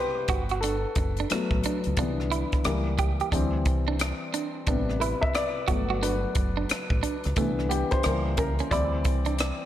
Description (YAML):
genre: R&B, neo-soul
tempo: 89 BPM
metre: 4/4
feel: swing 63% on 16ths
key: unclear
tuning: A4 = 441 Hz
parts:
  - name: warm upright piano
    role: accompaniment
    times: 0.0-9.7 s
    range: C3 to E5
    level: -29 LUFS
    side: left 3 dB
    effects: none
  - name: clean electric guitar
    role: second line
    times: 0.3-9.3 s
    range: A3 to G4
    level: -32 LUFS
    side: right 8 dB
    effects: spring reverb
  - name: deep dub fingered electric bass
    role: bass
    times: 0.3-9.5 s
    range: F#1 to D2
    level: -29 LUFS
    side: equal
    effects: none
  - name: compact cocktail drum kit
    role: drums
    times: 0.3-9.6 s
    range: hi-hat, kick drum, rim click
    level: -29 LUFS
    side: equal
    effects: none
room: light reverb, small room reverb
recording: none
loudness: -24 LUFS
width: side -12 dB against mid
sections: 0.0-9.7 A section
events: upright piano solo 0.0-9.7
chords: 0.3 Gmaj9; 2.0 Cmaj9; 2.6 C#dim7; 3.3 D9sus4; 4.7 Am9; 5.7 Gmaj9; 7.4 Cmaj9; 8.0 C#dim7; 8.7 D9sus4